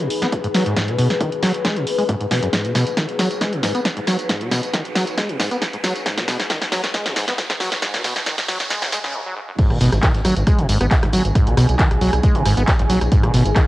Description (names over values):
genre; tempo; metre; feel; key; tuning
driving peak-time techno; 136 BPM; 4/4; straight; G# minor; A4 = 442 Hz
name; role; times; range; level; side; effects
overdriven acid bass; riff; 0.0-13.7 s; F#2 to B3; -22 LUFS; equal; sidechain pumping, cassette tape, analog delay
punchy analog drum machine; drums; 0.0-13.7 s; crash cymbal, handclaps, hi-hat, rim click, snare drum, tambourine; -22 LUFS; equal; cassette tape
riser, swell and impact; sound effects; 0.1-11.4 s; none; -33 LUFS; right 1 dB; none
deep dark ambient pad; texture; 0.0-13.7 s; D#4 to G#5; -27 LUFS; left 3 dB; chorus, built-in reverb, sidechain pumping, cassette tape
electronic kick drum; drums; 0.3-13.7 s; none; -19 LUFS; equal; high-pass filter on kick, cassette tape, high-pass filter on room
open jazz drum kit; drums; 9.6-13.7 s; hi-hat, snare drum; -37 LUFS; right 1 dB; none
gritty driven synth bass; bass; 9.7-13.5 s; G#1 to B1; -20 LUFS; equal; sidechain pumping
room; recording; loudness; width
light reverb; home recording on cassette, high-pass filter; -16 LUFS; side -17 dB against mid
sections
0.0-9.6 A section; 9.6-13.7 B section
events
build-up 0.0-9.6; drum fill 0.0-9.1; filter sweep on acid bass 0.0-9.6; filter sweep 0.0-9.6; swell 8.7-9.6; break 9.1-9.6; drop 9.6-13.7; impact 9.6-11.4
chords
0.0 G#m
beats
0.32 | 0.76 1.21 1.65 2.09 | 2.53 2.97 3.41 3.85 | 4.29 4.73 5.18 5.62 | 6.06 6.50 6.94 7.38 | 7.82 8.26 8.71 9.15 | 9.59 10.03 10.47 10.91 | 11.35 11.79 12.23 12.68 | 13.12 13.56